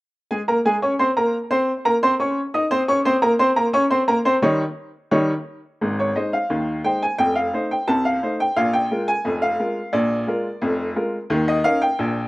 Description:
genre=ragtime piano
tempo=87 BPM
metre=2/4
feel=straight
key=Ab major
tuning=A4 = 440 Hz
part: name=clear upright piano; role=solo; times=0.3-12.3 s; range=F1 to Eb6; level=-18 LUFS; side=equal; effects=none
room=light reverb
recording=recorded outdoors, with no room sound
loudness=-18 LUFS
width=side -20 dB against mid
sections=0.3-5.8 A section; 5.8-12.3 B section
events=none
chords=0.3 Ab; 3.1 Eb7; 5.8 Ab; 7.2 F7; 8.6 Bb7; 11.3 Eb5

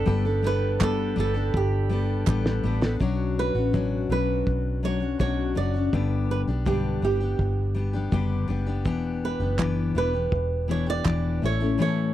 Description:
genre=acoustic pop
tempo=82 BPM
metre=4/4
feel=straight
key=unclear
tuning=A4 = 440 Hz
part: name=flamenco guitar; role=melody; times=0.0-12.1 s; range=G4 to D5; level=-29 LUFS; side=right 6 dB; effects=none
part: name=picked steel-string acoustic guitar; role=accompaniment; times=0.0-12.1 s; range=G2 to A4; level=-27 LUFS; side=left 5 dB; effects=none
part: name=tonewheel organ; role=sustained chords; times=0.0-3.0 s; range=D4 to B5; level=-36 LUFS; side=right 4 dB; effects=slow rotary speaker
part: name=vintage muted fingered electric bass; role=bass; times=0.0-11.8 s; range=E1 to B1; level=-26 LUFS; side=equal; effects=none
part: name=cloth-damped thuddy drum kit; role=drums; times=0.1-11.2 s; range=handclaps, kick drum, snare drum, tambourine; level=-25 LUFS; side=equal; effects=none
part: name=group handclap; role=percussion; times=0.8-2.4, 9.6-11.2 s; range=none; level=-34 LUFS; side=right 16 dB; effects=none
room=little or no reverb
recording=dry, close 1970s-style studio recording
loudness=-22 LUFS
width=side -13 dB against mid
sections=0.0-3.0 A section; 3.0-12.1 B section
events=drum fill 1.5-3.0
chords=0.0 Gadd9; 3.0 Bmadd9; 5.9 G; 8.9 Em7; 11.4 A

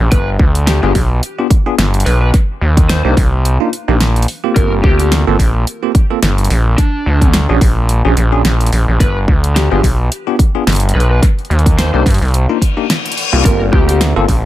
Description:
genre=glitch hop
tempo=108 BPM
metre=4/4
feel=swing 56% on 16ths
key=G minor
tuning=A4 = 436 Hz
part: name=gritty driven synth bass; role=bass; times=0.0-14.5 s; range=G1 to G2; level=-12 LUFS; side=equal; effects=none
part: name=downlifter and reverse cymbal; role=sound effects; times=0.0-0.1, 12.6-13.4 s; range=none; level=-20 LUFS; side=left 6 dB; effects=none
part: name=lead guitar through a small cranked amp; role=melody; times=0.1-14.0 s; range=D4 to C5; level=-22 LUFS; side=left 2 dB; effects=overdrive, dub echo
part: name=electronic kick drum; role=drums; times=0.1-14.4 s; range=none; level=-12 LUFS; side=equal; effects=none
part: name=pop drum kit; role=drums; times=0.1-14.4 s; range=hi-hat, snare drum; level=-18 LUFS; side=equal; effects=none
part: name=bell-like tine electric piano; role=stabs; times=0.8-14.2 s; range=Bb3 to A4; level=-18 LUFS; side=equal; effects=medium stereo tremolo, sidechain pumping, dub echo
room=little or no reverb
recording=none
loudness=-10 LUFS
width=side -14 dB against mid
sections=0.0-14.5 A section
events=reverse cymbal 12.6-13.4; kick drops out 12.9-13.4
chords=0.1 G7; 2.3 Cm9; 4.6 Gm11; 6.8 Bb; 9.0 G7; 11.2 Cm9; 13.4 Gm11

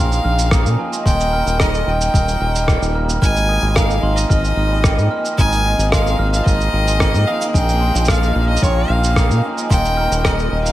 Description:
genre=folktronica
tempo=111 BPM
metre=4/4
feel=straight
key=unclear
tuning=A4 = 440 Hz
part: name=clear violin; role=melody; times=0.0-10.7 s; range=Db5 to Ab5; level=-22 LUFS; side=left 1 dB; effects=digital delay
part: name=glockenspiel with soft plastic mallets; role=second line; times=0.0-10.7 s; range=G5 to F6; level=-26 LUFS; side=right 2 dB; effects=vintage 12-bit sampler grit, tape echo
part: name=bright string quartet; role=sustained chords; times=0.0-10.7 s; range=F3 to Ab4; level=-28 LUFS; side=left 2 dB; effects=none
part: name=cimbalom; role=arpeggios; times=0.0-10.7 s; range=Eb3 to G4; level=-23 LUFS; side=right 1 dB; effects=none
part: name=round analog bass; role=bass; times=0.0-10.7 s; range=Eb1 to Bb2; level=-18 LUFS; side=equal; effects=none
part: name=electronic cabasa and rim click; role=drums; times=0.1-10.7 s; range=none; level=-23 LUFS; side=right 1 dB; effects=none
part: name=electronic kick drum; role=drums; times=0.5-10.4 s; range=none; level=-18 LUFS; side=equal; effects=none
room=little or no reverb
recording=none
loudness=-14 LUFS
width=side -14 dB against mid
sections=0.0-10.7 A section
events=none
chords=0.0 Bbm7; 1.1 Eb7; 3.2 Abmaj7; 7.5 Bbm7; 9.7 Eb7

